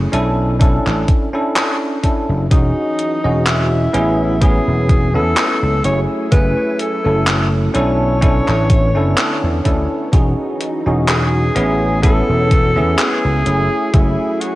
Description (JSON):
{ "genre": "vaporwave", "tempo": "63 BPM", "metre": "4/4", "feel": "swing 54% on 16ths", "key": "unclear", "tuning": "A4 = 439 Hz", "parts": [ { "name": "bell-like tine electric piano", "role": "accompaniment", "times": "0.0-14.6 s", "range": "A3 to D#5", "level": "-19 LUFS", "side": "equal", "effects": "analog chorus, vintage 12-bit sampler grit" }, { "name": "vintage slap bass", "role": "bass", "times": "0.0-14.1 s", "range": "E1 to E2", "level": "-17 LUFS", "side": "equal", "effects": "none" }, { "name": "gated 80s digital drum machine", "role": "drums", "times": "0.1-14.6 s", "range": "handclaps, hi-hat", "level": "-20 LUFS", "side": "equal", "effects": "gated reverb, overdrive" }, { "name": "electronic kick drum", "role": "drums", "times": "0.6-14.1 s", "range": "none", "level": "-14 LUFS", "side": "equal", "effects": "overdrive" }, { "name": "breathy alto saxophone", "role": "melody", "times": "2.5-14.6 s", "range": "D#4 to C#5", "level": "-20 LUFS", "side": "equal", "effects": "tape echo" }, { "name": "soft string machine", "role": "sustained chords", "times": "2.5-14.6 s", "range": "D3 to G#5", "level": "-28 LUFS", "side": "equal", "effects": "none" } ], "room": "light reverb", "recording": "none", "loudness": "-13 LUFS", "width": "side -17 dB against mid", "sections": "0.0-14.6 A section", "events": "none", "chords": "0.1 Bm11; 2.5 Emaj13; 3.9 Amaj7; 5.8 F#m9; 7.8 Bm11; 10.1 Emaj13; 11.6 Amaj7; 13.5 F#m9" }